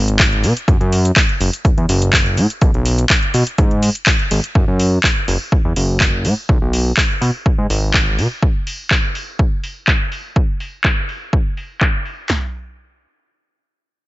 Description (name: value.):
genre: filtered disco house.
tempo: 124 BPM.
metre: 4/4.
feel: straight.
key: F# minor.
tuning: A4 = 440 Hz.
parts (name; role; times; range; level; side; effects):
fat analog bass; bass; 0.0-8.3 s; F#1 to B2; -16 LUFS; equal; sidechain pumping, low-pass filter.
house drum kit; drums; 0.1-12.2 s; handclaps, hi-hat, shaker; -18 LUFS; equal; overdrive, sidechain pumping on hats, low-pass filter on hats, sidechain pumping on perc, low-pass filter on perc, low-pass filter on snare, low-pass filter on room.
punchy analog drum machine; drums; 0.2-12.4 s; handclaps, kick drum, snare drum, toms; -16 LUFS; equal; none.
room: little or no reverb.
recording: nothing above 7.8 kHz.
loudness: -14 LUFS.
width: side -18 dB against mid.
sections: 0.0-4.6 A section; 4.6-12.3 B section; 12.3-14.1 C section.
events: drop 0.0-4.6.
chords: none.